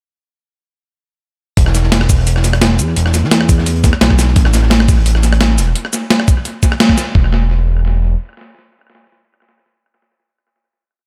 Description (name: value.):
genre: liquid drum and bass.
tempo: 172 BPM.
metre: 4/4.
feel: straight.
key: unclear.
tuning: A4 = 441 Hz.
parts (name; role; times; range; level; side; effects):
smooth synth bass; bass; 1.6-8.2 s; E1 to E2; -15 LUFS; equal; none.
breakbeat sampler-style drum kit; drums; 1.6-7.0 s; hi-hat, rim click, shaker, snare drum; -18 LUFS; equal; tape echo.
crunchy breakbeat drum kit; drums; 1.6-5.7 s; hi-hat, snare drum; -26 LUFS; equal; high-pass filter on hats, high-pass filter on snare, high-pass filter on room, tape echo.
electronic kick drum; drums; 1.6-7.2 s; none; -14 LUFS; equal; none.
room: moderate echo chamber reverb, RT60 1.7 s, small room ambience.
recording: echo-heavy mix.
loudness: -13 LUFS.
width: mono.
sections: 1.6-7.2 drop; 7.2-9.9 final note.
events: drop 1.6-7.2; band accent 6.8.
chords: none.